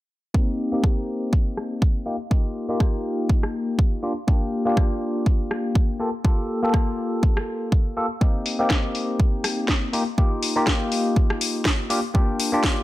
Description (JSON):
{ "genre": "filtered disco house", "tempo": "122 BPM", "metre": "4/4", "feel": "swing 56% on 16ths", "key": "unclear", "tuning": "A4 = 440 Hz", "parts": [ { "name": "bell-like tine electric piano", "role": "accompaniment", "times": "0.3-12.8 s", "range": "Bb3 to A4", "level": "-24 LUFS", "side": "left 1 dB", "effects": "phaser, sidechain pumping, low-pass filter" }, { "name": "electronic kick drum", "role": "drums", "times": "0.3-12.8 s", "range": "none", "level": "-20 LUFS", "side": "equal", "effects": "overdrive" }, { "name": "house drum kit", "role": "drums", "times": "0.8-12.8 s", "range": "hi-hat, rim click, snare drum", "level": "-26 LUFS", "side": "left 1 dB", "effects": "overdrive, low-pass filter on snare, sidechain pumping on hats, low-pass filter on hats" } ], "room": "light reverb", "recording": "none", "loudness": "-20 LUFS", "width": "side -16 dB against mid", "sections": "0.3-12.8 A section", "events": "filter sweep on drum 0.3-12.8; filter sweep on tine electric piano 0.3-12.8", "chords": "0.3 Cm7; 2.1 F9sus4; 4.0 Bb6; 6.0 Gm9; 8.2 Cm7; 9.9 F9sus4; 11.9 Bb6" }